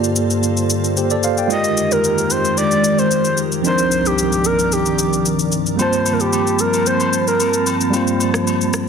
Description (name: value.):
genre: amapiano.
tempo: 112 BPM.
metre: 4/4.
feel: straight.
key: G minor.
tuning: A4 = 440 Hz.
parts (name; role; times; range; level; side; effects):
tine electric piano; accompaniment; 0.0-8.9 s; F3 to A5; -20 LUFS; right 2 dB; medium stereo tremolo.
glassy FM pad; sustained chords; 0.0-8.9 s; C2 to A5; -21 LUFS; left 1 dB; ensemble chorus, built-in reverb.
electronic shaker and rim click; drums; 0.0-8.9 s; none; -23 LUFS; left 4 dB; none.
breathy flute-like synth lead; melody; 1.5-7.6 s; G4 to Eb5; -18 LUFS; right 1 dB; chorus, tape echo.
agogo bells; percussion; 5.8-8.6 s; none; -26 LUFS; left 3 dB; none.
room: light reverb, digital ambience.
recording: dense, heavily limited modern master.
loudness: -14 LUFS.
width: side -6 dB against mid.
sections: 0.0-8.9 A section.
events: kick muted 3.6-5.8.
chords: 0.0 Gm11; 1.5 Fm11; 3.6 Cm11; 5.8 Gm11.